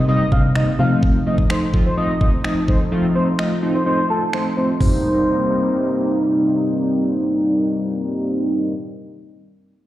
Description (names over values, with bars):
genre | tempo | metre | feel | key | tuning
dance-pop | 127 BPM | 4/4 | straight | C dorian | A4 = 439 Hz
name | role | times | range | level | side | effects
expressive synth lead | melody | 0.0-6.2 s | A4 to F5 | -23 LUFS | equal | chorus, sidechain pumping, low-pass filter, slapback echo, tape echo
filtered supersaw swell | sustained chords | 0.0-8.7 s | C3 to Eb4 | -28 LUFS | equal | sidechain pumping, low-pass filter
solid FM bass | bass | 0.0-1.0 s | C3 | -17 LUFS | equal | sidechain pumping
downlifter | sound effects | 0.0-1.0 s | none | barely audible | none | none
chorused polysynth | accompaniment | 0.1-8.7 s | F3 to F4 | -19 LUFS | equal | sidechain pumping, low-pass filter, slapback echo
pop drum kit | drums | 0.3-4.9 s | finger snaps, hi-hat, kick drum, toms | -19 LUFS | equal | none
room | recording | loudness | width
light reverb | live gig heard through the venue's PA, recital hall reverb | -16 LUFS | side -14 dB against mid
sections
0.0-4.8 A section; 4.8-8.6 B section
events
none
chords
0.0 Cm7; 0.8 F7; 4.8 Cm7